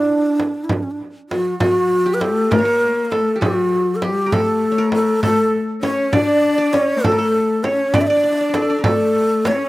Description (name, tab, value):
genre	Arabic maqam ensemble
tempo	66 BPM (dotted quarters)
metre	6/8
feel	straight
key	unclear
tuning	A4 = 442 Hz
part	breathy low ney	melody	0.0-9.7 s	C#4 to E5	-18 LUFS	equal	slapback echo
part	qanun	second line	0.0-9.7 s	D4 to D5	-24 LUFS	right 2 dB	slapback echo
part	frame drum	percussion	0.4-9.6 s	none	-22 LUFS	right 1 dB	none
part	dark cello	second line	1.3-9.7 s	F3+46c to D4	-21 LUFS	left 3 dB	none
room	little or no reverb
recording	recorded outdoors, with no room sound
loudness	-15 LUFS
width	side -18 dB against mid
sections	0.0-1.6 A section; 1.6-9.7 B section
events	none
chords	none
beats	0.69 | 1.60 2.50 | 3.41 4.32 | 5.22 6.13 | 7.03 7.94 | 8.85